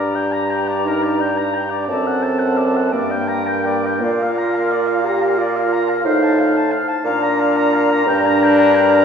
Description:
classical, slow romantic movement for wind quintet; 58 BPM (dotted quarters); 6/8; rubato; G minor; A4 = 440 Hz
mellow hollow concert flute; melody; 0.0-9.0 s; F5 to Bb5; -24 LUFS; left 5 dB
warm oboe; second line; 0.0-9.0 s; Bb4 to Bb5; -23 LUFS; left 1 dB
mellow French horn; accompaniment; 0.0-9.0 s; Bb3 to G4; -19 LUFS; left 1 dB
warm clarinet; accompaniment; 0.0-9.0 s; G4 to C5; -24 LUFS; right 6 dB
clear bassoon; bass; 0.0-9.0 s; F#2 to Bb2; -21 LUFS; right 2 dB
wet concert hall reverb, RT60 1.9 s; recorded in a church or concert hall; -15 LUFS; side -7 dB against mid
0.0-9.0 A section
0.0 Gm; 1.9 D7/F#; 2.9 Gm; 4.0 Bb; 6.0 F7/A; 7.0 Bb; 8.1 Gm

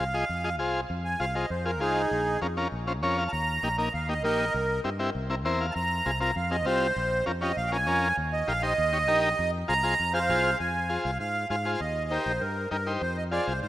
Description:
latin, cumbia; 198 BPM; 4/4; straight; F minor, F dorian from 10.6 s; A4 = 440 Hz
accordion; melody; 0.0-13.7 s; Eb4 to Bb5; -27 LUFS; right 2 dB; light tremolo tuning
overdriven combo organ; accompaniment; 0.0-13.5 s; Bb3 to F5; -30 LUFS; left 1 dB
fingered electric bass; bass; 0.0-13.7 s; Bb1 to Ab2; -32 LUFS; left 1 dB
moderate lush hall reverb, RT60 2.7 s; rough home demo mix; -25 LUFS; side -14 dB against mid
0.9-10.6 A section; 10.6-13.7 B section
accordion solo 0.9-10.6; transistor combo organ fill 2.9-3.3, 5.3-5.8
0.0 Fm; 2.1 Bbm; 3.3 Eb; 4.5 C7; 5.8 Fm; 7.0 Bbm; 8.2 Eb; 9.4 Fm; 11.8 Eb; 13.0 Fm

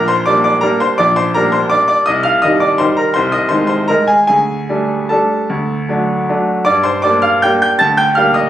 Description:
classical, piano waltz; 146-177 BPM; 3/4; rubato; G minor; A4 = 437 Hz
bright grand piano; solo; 0.0-8.5 s; Bb1 to A6; -11 LUFS; equal
moderate large studio reverb, RT60 0.9 s; recorded on a phone in the room, club reverb, compression; -11 LUFS; side -12 dB against mid
0.0-6.7 A section; 6.7-8.5 B section
0.0 Gm/Bb; 2.1 Cm; 3.2 Ab/C; 4.3 Dsus4; 5.5 D; 6.7 Gm

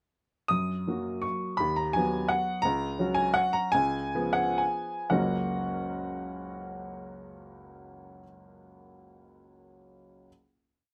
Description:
classical, piano waltz; 112-178 BPM; 3/4; rubato; F# major; A4 = 440 Hz
clear upright piano; solo; 0.5-10.3 s; F#1 to D#6; -30 LUFS; equal
light reverb; close, detailed microphones; -29 LUFS; mono
0.5-5.1 A section; 5.1-8.1 final chord
slowing down 2.1-5.1
0.5 F#; 1.6 B/D#; 2.6 F#/C#; 3.7 C#7; 5.1 F#

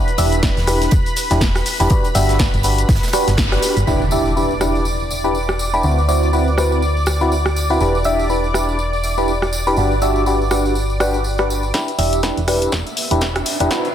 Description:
piano house; 122 BPM; 4/4; swing 58% on 16ths; E minor; A4 = 439 Hz
analog string pad; sustained chords; 0.0-13.9 s; B4 to E6; -26 LUFS; equal; ensemble chorus, sidechain pumping
barking FM electric piano; riff; 0.0-13.9 s; C4 to E5; -19 LUFS; equal; phaser, sidechain pumping, low-pass filter, tape echo
punchy analog drum machine; drums; 0.1-13.9 s; cabasa, hi-hat, rim click, snare drum; -23 LUFS; equal; high-pass filter on hats, low-pass filter on hats, high-pass filter on perc, low-pass filter on perc, high-pass filter on snare, low-pass filter on snare
solid FM bass; bass; 0.2-13.7 s; E1 to D2; -20 LUFS; equal; sidechain pumping
tight metal drum kit; drums; 0.2-3.8 s; hi-hat, snare drum; -32 LUFS; right 3 dB
tambourine; percussion; 0.2-13.9 s; -30 LUFS; right 1 dB
electronic kick drum; drums; 0.4-3.5, 11.7-13.8 s; -18 LUFS; equal; high-pass filter on kick
impact and riser; sound effects; 3.9-5.8, 12.5-13.9 s; -26 LUFS; equal
moderate digital room reverb, RT60 1.2 s; dense, heavily limited modern master; -15 LUFS; side -10 dB against mid
0.0-3.9 A section; 3.9-11.7 B section; 11.7-13.9 C section
band accent 3.4; impact 3.9-5.8; filter sweep on drum 3.9-11.7; filter sweep on FM electric piano 3.9-11.7; build-up 11.7-13.9; drum fill 11.7-13.9; filter sweep on analog synth pad 11.7-13.9; riser 12.5-13.9
0.0 Em7; 1.9 Gmaj7; 3.9 Em7; 5.8 D13; 7.8 Em7; 9.8 Gmaj7; 11.7 Em7

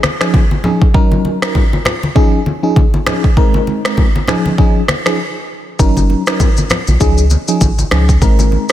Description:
afrobeats; 99 BPM; 4/4; swing 58% on 16ths; Db major; A4 = 444 Hz
afro-pop drum kit; drums; 0.0-8.7 s; finger snaps, kick drum, rim click, shaker; -13 LUFS; equal; overdrive, soft clipping on snare
congas; percussion; 0.0-8.7 s; -20 LUFS; left 2 dB
FM electric piano with auto-pan; accompaniment; 0.2-8.7 s; F3 to Bb4; -16 LUFS; equal; phaser
warm sub bass; bass; 5.8-8.6 s; Gb1 to Db2; -12 LUFS; equal
light reverb; dense, heavily limited modern master; -10 LUFS; side -12 dB against mid
0.0-8.7 A section
break 0.0-5.8
0.0 Dbadd9; 0.9 Gb6; 2.2 Dbadd9; 3.4 Abadd9; 4.3 Dbadd9; 5.8 Gb6; 7.0 Dbadd9; 8.2 Abadd9

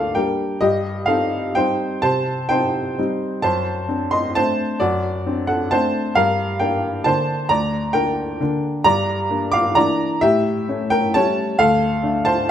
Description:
classical, piano waltz; 131 BPM; 3/4; uneven beats, rubato; G minor, D minor from 8.9 s; A4 = 440 Hz
clear upright piano; solo; 0.0-12.5 s; D2 to D6; -17 LUFS; equal
moderate recital hall reverb, RT60 1.6 s; close, detailed microphones; -17 LUFS; side -9 dB against mid
0.0-12.5 A section
0.0 Gm; 0.6 Cm/G; 3.4 D7/F#; 6.2 Gm; 8.9 Em7b5/G; 10.2 A7; 11.6 Dm

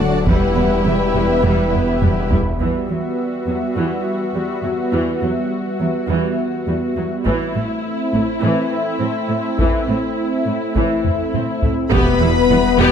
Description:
cinematic, hybrid orchestral and electronic film score; 103 BPM; 4/4; straight; E minor; A4 = 440 Hz
warm symphonic violin section; melody; 0.0-2.0, 11.9-12.9 s; E5 to B5; -27 LUFS; left 1 dB
clear symphonic violin section; second line; 0.0-2.4, 11.9-12.9 s; F#4 to D5; -22 LUFS; left 4 dB
clear symphonic viola section; accompaniment; 0.0-12.9 s; E3 to G4; -22 LUFS; equal
sweeping resonant pad; sustained chords; 0.0-12.9 s; F#3 to E5; -22 LUFS; equal; chorus, tremolo
warm French horn section; sustained chords; 0.0-2.3, 11.9-12.9 s; F#3 to B4; -22 LUFS; left 8 dB
dark symphonic cello section; bass; 0.0-12.9 s; E2 to A2; -23 LUFS; right 2 dB
rich symphonic double bass section; bass; 0.0-2.4, 11.9-12.9 s; E1; -22 LUFS; right 2 dB
wide detuned saw bass; bass; 0.0-2.6, 11.9-12.9 s; D1 to E1; -24 LUFS; equal; chorus
taiko ensemble; drums; 0.3-3.7, 7.3-12.5 s; -21 LUFS; equal
moderate scoring stage reverb, RT60 1.7 s; -16 LUFS; side -8 dB against mid
0.0-2.6 A section; 2.6-11.9 B section
drum fill 1.7-2.6, 11.0-11.9
0.3 Em; 2.6 Emadd9; 7.3 Am; 11.9 Em

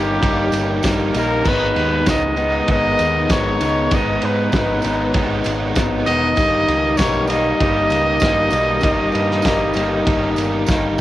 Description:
indie rock; 98 BPM; 4/4; straight; G# harmonic minor; A4 = 440 Hz
warm trumpet; melody; 0.0-10.6 s; G4 to D#5; -20 LUFS; equal; cassette tape
airy breathy pad; sustained chords; 0.0-11.0 s; G3 to D#5; -29 LUFS; right 2 dB
cranked stack guitar; riff; 0.0-11.0 s; G2 to D#4; -27 LUFS; right 6 dB; overdrive, wide subtle chorus, cassette tape
electric guitar through a small old amp; riff; 0.0-11.0 s; G2 to D#4; -20 LUFS; left 2 dB; harmonic tremolo, cassette tape
growling picked electric bass; bass; 0.0-11.0 s; E1 to G#2; -24 LUFS; equal; overdrive
loose indie drum kit; drums; 0.2-10.8 s; crash cymbal, kick drum, ride cymbal, snare drum; -22 LUFS; right 1 dB; cassette tape
tambourine; percussion; 0.2-11.0 s; -37 LUFS; right 7 dB
small room ambience; home recording on cassette; -15 LUFS; side -14 dB against mid
0.0-11.0 A section
drum fill 10.7-11.0
0.0 D#/G; 1.5 G#m; 6.4 D#/G

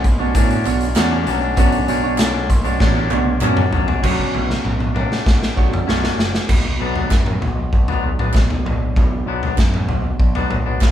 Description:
indie rock; 97 BPM; 4/4; straight; B minor; A4 = 440 Hz
twangy electric guitar; riff; 0.0-10.9 s; F#3 to D4; -23 LUFS; left 5 dB
growling picked electric bass; bass; 0.0-10.9 s; F#1 to A2; -22 LUFS; equal; overdrive
raw garage drum kit; drums; 0.0-10.9 s; crash cymbal, hi-hat, kick drum, snare drum, toms; -18 LUFS; equal
electric guitar through a small old amp; riff; 0.2-10.9 s; B2 to C#5; -24 LUFS; right 6 dB
group handclap; percussion; 0.7-10.9 s; -33 LUFS; right 7 dB
moderate large studio reverb, RT60 0.9 s; band playing live in one room; -15 LUFS; side -10 dB against mid
0.0-4.0 A section; 4.0-6.5 B section; 6.5-10.9 C section
drum fill 2.8-4.0, 4.0-6.5
0.0 Bmadd9; 6.5 Bm

